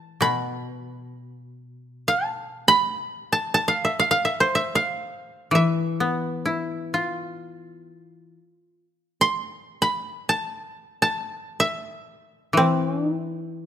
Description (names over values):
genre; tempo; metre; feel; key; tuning
japanese traditional, Japanese chamber music; free time; none; none; E miyako bushi; A4 = 441 Hz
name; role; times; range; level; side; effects
koto; melody; 0.0-13.7 s; E4 to C6; -21 LUFS; right 1 dB; none
koto; accompaniment; 0.0-13.7 s; B2 to F4; -24 LUFS; left 2 dB; none
room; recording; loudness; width
light reverb; close, detailed microphones; -21 LUFS; side -10 dB against mid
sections
0.0-13.7 A section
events
none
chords
none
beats
free time